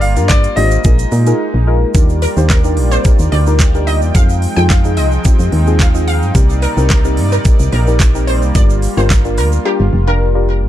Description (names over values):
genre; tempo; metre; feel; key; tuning
dance-pop; 109 BPM; 4/4; straight; Eb major; A4 = 444 Hz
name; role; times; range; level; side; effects
clear concert grand piano; melody; 0.0-1.6 s; D5 to F5; -19 LUFS; left 1 dB; digital delay
deep mellow chord stab; accompaniment; 0.0-10.7 s; C4 to C5; -20 LUFS; left 2 dB; chorus, sidechain pumping
soft supersaw; sustained chords; 0.0-10.7 s; C3 to G5; -22 LUFS; right 1 dB; sidechain pumping
solid FM bass; bass; 0.0-10.7 s; F1 to Bb2; -14 LUFS; equal; sidechain pumping
pop drum kit; drums; 0.0-9.5 s; handclaps, hi-hat, kick drum, snare drum; -12 LUFS; equal; none
egg shaker; percussion; 0.0-9.6 s; none; -30 LUFS; right 17 dB; none
wide unison pluck; melody; 2.2-10.3 s; G4 to G5; -21 LUFS; equal; lush chorus, sidechain pumping, digital delay
room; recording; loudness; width
little or no reverb; dark, warm production; -10 LUFS; side -12 dB against mid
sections
0.0-1.9 A section; 1.9-10.7 B section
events
break 1.4-1.9; silent gap 9.7-10.7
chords
0.0 Gm7; 0.8 Bb7sus4; 1.9 Ebmaj7; 4.1 Fm7; 6.3 Cm7; 8.6 Gm7